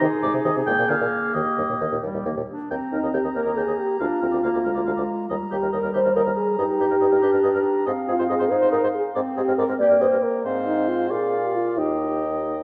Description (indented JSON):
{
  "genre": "quick classical-period movement for wind quintet",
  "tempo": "92 BPM (dotted quarters)",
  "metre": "6/8",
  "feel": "straight",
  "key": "Eb major",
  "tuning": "A4 = 440 Hz",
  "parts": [
    { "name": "concert flute", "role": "melody", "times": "0.0-12.6 s", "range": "G4 to Bb5", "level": "-33 LUFS", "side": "equal", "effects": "none" },
    { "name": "clear clarinet", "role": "accompaniment", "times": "0.0-12.6 s", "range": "G3 to G4", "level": "-32 LUFS", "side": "equal", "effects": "none" },
    { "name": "mellow French horn", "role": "accompaniment", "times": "0.0-12.6 s", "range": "G2 to D5", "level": "-25 LUFS", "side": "equal", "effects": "none" },
    { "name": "warm bassoon", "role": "bass", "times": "0.0-12.6 s", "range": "D2 to C3", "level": "-30 LUFS", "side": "equal", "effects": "none" },
    { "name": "warm oboe", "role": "second line", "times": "0.2-12.6 s", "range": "G4 to G5", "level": "-32 LUFS", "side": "equal", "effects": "none" }
  ],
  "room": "wet concert hall reverb, RT60 2.1 s",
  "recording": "none",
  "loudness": "-22 LUFS",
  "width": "mono",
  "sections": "0.0-2.7 A section; 2.7-12.6 A section",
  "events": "none",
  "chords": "0.0 Ab; 0.7 Bb7(no3); 1.4 Eb; 4.0 Bb/D; 5.3 Eb; 6.6 Eb/G; 7.9 Fm7/Ab; 9.2 Bb7(no3); 9.8 Eb/G (rootless); 10.4 Fm/Ab; 11.1 Bb; 11.8 Eb"
}